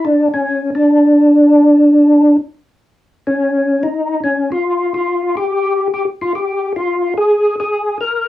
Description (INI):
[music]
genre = jazz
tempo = 143 BPM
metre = 4/4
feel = swing 64% on 8ths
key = unclear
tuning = A4 = 440 Hz
[part]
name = percussive tonewheel organ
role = solo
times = 0.0-8.3 s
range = Db4 to Bb4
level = -11 LUFS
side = equal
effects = slow rotary speaker, overdrive, chorus vibrato, cassette tape
[sound]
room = wet booth ambience, RT60 0.2 s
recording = home recording on cassette, small room ambience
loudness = -11 LUFS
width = side -14 dB against mid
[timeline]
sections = 0.0-8.3 A section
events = none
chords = none